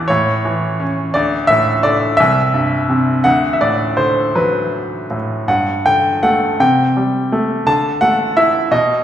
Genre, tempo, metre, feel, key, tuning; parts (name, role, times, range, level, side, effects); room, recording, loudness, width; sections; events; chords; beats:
classical, lyrical solo piano; 55 BPM (dotted quarters); 6/8; uneven beats, rubato; A4 = 438 Hz
bright grand piano; solo; 0.0-9.0 s; C2 to A5; -13 LUFS; equal
wet recital hall reverb, RT60 1.3 s; recorded in a church or concert hall; -13 LUFS; side -10 dB against mid
0.0-9.0 A section
0.1 A; 1.1 D5; 2.2 C; 3.3 D; 5.5 Gsus2; 6.6 C5; 7.7 Dsus2
0.09 | 1.14 2.19 | 3.25 4.35 | 5.48 6.60 | 7.67 8.72